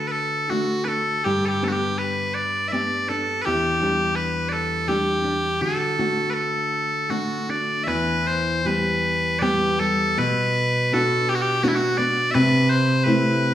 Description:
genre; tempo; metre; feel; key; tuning
celtic folk, Celtic slow air; 76-86 BPM; 3/4; rubato; E minor; A4 = 439 Hz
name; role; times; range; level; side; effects
loud bright bagpipes; melody; 0.0-13.5 s; E4 to E5; -22 LUFS; equal; none
nylon-string guitar; accompaniment; 0.0-13.5 s; E2 to G4; -23 LUFS; left 1 dB; none
room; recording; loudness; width
moderate concert hall reverb, RT60 2.1 s; small room reverb; -19 LUFS; side -11 dB against mid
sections
0.0-7.9 A section; 7.9-13.5 B section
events
none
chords
0.0 D; 1.3 G; 3.5 Em7; 5.6 D; 7.9 Em; 10.2 Bm; 12.3 Am/C

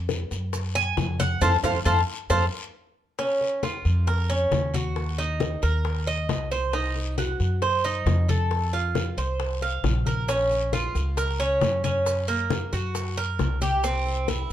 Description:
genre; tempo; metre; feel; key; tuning
latin, Cuban son and guajira; 135 BPM; 4/4; straight; Bb harmonic minor from 3.2 s; A4 = 440 Hz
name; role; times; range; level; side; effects
upright bass; bass; 0.0-14.5 s; Bb1 to Gb2; -26 LUFS; equal; none
bongos; percussion; 0.1-14.5 s; none; -34 LUFS; left 7 dB; none
congas; percussion; 0.1-14.5 s; none; -32 LUFS; left 4 dB; none
guiro; percussion; 0.1-14.5 s; none; -40 LUFS; left 5 dB; none
maracas; percussion; 0.1-2.4, 10.3-14.5 s; none; -41 LUFS; right 5 dB; none
Cuban tres; arpeggios; 0.8-14.5 s; Bb3 to Ab5; -26 LUFS; right 2 dB; none
room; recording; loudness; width
light reverb; dark, warm production; -22 LUFS; side -11 dB against mid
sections
0.0-3.2 A section; 3.2-14.5 B section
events
Cuban tres solo 0.0-3.2; band accent 1.4-3.2; drum fill 2.5-3.2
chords
0.0 N.C.; 0.5 Fm; 1.4 F; 3.2 Bbm; 5.0 Eb5; 6.7 Cdim; 8.5 F5; 10.3 Bbm; 12.1 Gb; 13.8 C

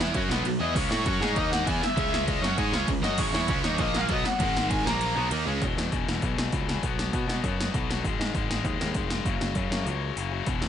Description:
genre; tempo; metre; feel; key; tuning
punk rock; 198 BPM; 4/4; straight; G# minor; A4 = 440 Hz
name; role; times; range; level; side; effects
sludgy distorted guitar; riff; 0.0-5.6 s; G#2 to A4; -33 LUFS; equal; overdrive
tight distorted guitar; riff; 0.0-10.7 s; E2 to A4; -31 LUFS; left 10 dB; distortion
tight distorted guitar; riff; 0.0-5.6 s; G#2 to A4; -32 LUFS; right 12 dB; distortion
picked electric bass; bass; 0.0-10.7 s; E1 to B2; -31 LUFS; equal; none
80s electronic pad drums; drums; 0.0-10.7 s; crash cymbal, hi-hat, kick drum, ride cymbal, snare drum; -29 LUFS; right 1 dB; overdrive
overdriven electric guitar; melody; 0.6-5.3 s; C#5 to A#5; -30 LUFS; left 1 dB; none
room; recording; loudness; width
little or no reverb; nothing above 10.6 kHz; -24 LUFS; side -9 dB against mid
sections
0.0-5.6 A section; 5.6-10.7 B section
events
kick and snare drop out 0.5-0.8, 5.0-5.6; break 9.9-10.5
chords
0.0 B5; 0.8 C#5; 1.4 D#5; 1.7 C#5; 3.2 G#m; 3.8 A#5; 4.1 G#m; 4.9 A#5; 5.2 G#m; 5.6 E5; 6.8 B5; 8.0 G#5; 9.3 F#5

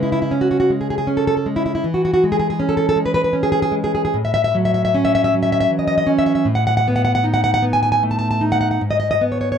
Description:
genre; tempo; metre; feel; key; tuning
romantic piece for solo classical guitar; 77 BPM; 3/4; uneven beats, rubato; unclear; A4 = 440 Hz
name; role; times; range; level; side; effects
nylon-string guitar; solo; 0.0-9.6 s; G#2 to A5; -15 LUFS; equal; none
room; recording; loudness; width
little or no reverb; dry, close 1970s-style studio recording; -15 LUFS; side -8 dB against mid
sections
0.0-9.6 A section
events
none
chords
0.0 C#5; 1.8 C#m/E; 4.2 F#m7/A; 6.5 B7/A; 8.8 G#madd11

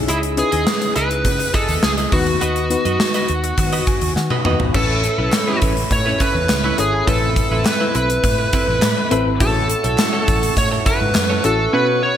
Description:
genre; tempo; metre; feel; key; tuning
1980s-style pop; 103 BPM; 4/4; straight; unclear; A4 = 440 Hz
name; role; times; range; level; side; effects
FM electric piano with tremolo; accompaniment; 0.0-12.2 s; A2 to G#5; -24 LUFS; left 4 dB; none
vintage muted fingered electric bass; bass; 0.0-11.7 s; G#1 to D#3; -22 LUFS; equal; none
smooth overdriven lead guitar; melody; 0.1-12.2 s; E4 to C#5; -20 LUFS; equal; none
twelve-string electric guitar; riff; 0.1-12.1 s; C4 to D#5; -25 LUFS; right 3 dB; wide subtle chorus
gated 80s drum kit; drums; 0.1-11.6 s; crash cymbal, hi-hat, kick drum, snare drum, toms; -19 LUFS; equal; gated reverb
glass harmonica; sustained chords; 4.7-12.2 s; C4 to C#6; -28 LUFS; right 2 dB; none
group handclap; percussion; 5.3-11.3 s; none; -34 LUFS; right 4 dB; none
room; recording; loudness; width
moderate lush hall reverb, RT60 2.1 s; bright 1980s-style digital production; -15 LUFS; side -10 dB against mid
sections
0.0-4.7 A section; 4.7-12.2 B section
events
FM electric piano fill 3.6-4.7; drum fill 4.2-4.7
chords
0.0 C#madd9; 2.1 B/D#; 4.7 Aadd9; 7.1 Amadd9; 9.4 F#m7/A

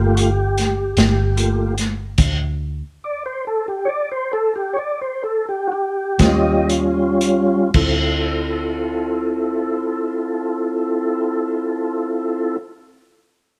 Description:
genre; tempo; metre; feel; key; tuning
slow blues; 37-50 BPM (dotted quarters); 12/8; straight; D minor; A4 = 441 Hz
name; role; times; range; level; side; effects
tonewheel organ; sustained chords; 0.0-12.6 s; G3 to Eb5; -21 LUFS; equal; slow rotary speaker, chorus vibrato
vintage muted fingered electric bass; bass; 0.0-12.6 s; G1 to Eb2; -24 LUFS; equal; none
vintage drum kit; drums; 0.2-8.0 s; crash cymbal, hi-hat, kick drum, snare drum; -21 LUFS; equal; none
room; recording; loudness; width
moderate stone room reverb, RT60 1.3 s; band playing live in one room; -20 LUFS; mono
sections
0.0-7.7 A section; 7.7-13.6 B section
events
tonewheel organ solo 0.0-7.7; slowing down 0.6-7.7; stop 2.2-6.2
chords
0.0 Gm9; 2.2 Dsus4; 6.2 Eb7; 7.7 Dm9

